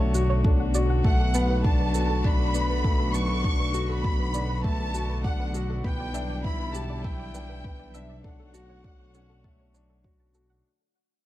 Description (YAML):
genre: piano and strings electronica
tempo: 100 BPM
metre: 4/4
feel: straight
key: unclear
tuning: A4 = 441 Hz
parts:
  - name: warm studio violin section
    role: melody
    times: 0.0-10.0 s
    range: E5 to C#6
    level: -33 LUFS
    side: right 1 dB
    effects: none
  - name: dark string quartet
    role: sustained chords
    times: 0.0-10.6 s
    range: D3 to C#5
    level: -35 LUFS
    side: left 1 dB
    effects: none
  - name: soft round pluck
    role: arpeggios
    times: 0.0-10.6 s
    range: A4 to B5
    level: -39 LUFS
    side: right 2 dB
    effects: chorus, sidechain pumping, ping-pong delay
  - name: warm concert grand piano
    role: riff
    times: 0.0-10.7 s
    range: A3 to G4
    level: -32 LUFS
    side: left 3 dB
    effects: ping-pong delay
  - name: dark detuned saw bass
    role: bass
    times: 0.0-10.6 s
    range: B1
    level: -27 LUFS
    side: equal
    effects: sidechain pumping
  - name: shaker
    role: drums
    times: 0.1-10.5 s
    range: none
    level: -38 LUFS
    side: right 6 dB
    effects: overdrive
  - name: electronic kick drum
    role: drums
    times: 0.4-10.2 s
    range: none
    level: -25 LUFS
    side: equal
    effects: none
room: small room ambience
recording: dark, warm production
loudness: -23 LUFS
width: side -14 dB against mid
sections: 0.0-10.6 A section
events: drop 0.0-10.6; fade-out 1.0-10.6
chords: 0.0 Dmaj7/B; 1.0 Bm7; 5.8 Em7/B; 8.2 Dmaj7/B